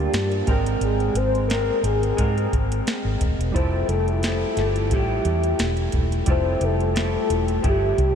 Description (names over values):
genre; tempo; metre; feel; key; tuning
indie pop, bedroom pop; 88 BPM; 4/4; swing 55% on 16ths; F major; A4 = 438 Hz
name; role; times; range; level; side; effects
soft octave-layered synth lead; melody; 0.0-8.2 s; G4 to C5; -25 LUFS; left 2 dB; tremolo, lush chorus, ping-pong delay
electric guitar through a small old amp; accompaniment; 0.0-8.2 s; Bb2 to Bb4; -29 LUFS; left 2 dB; wide subtle chorus, warbly pitch drift
warbly lo-fi synth keys; accompaniment; 0.0-8.2 s; G3 to G5; -31 LUFS; right 6 dB; chorus
vintage muted fingered electric bass; bass; 0.0-8.2 s; Eb1 to Ab2; -24 LUFS; equal; none
soft vintage rhythm box; drums; 0.1-8.2 s; hi-hat, kick drum, snare drum; -26 LUFS; equal; none
room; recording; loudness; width
moderate huge ambient reverb, RT60 7.9 s; dreamy mix soaked in reverb; -19 LUFS; side -8 dB against mid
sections
0.0-8.2 A section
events
none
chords
0.5 Abmaj9; 3.6 Fmaj9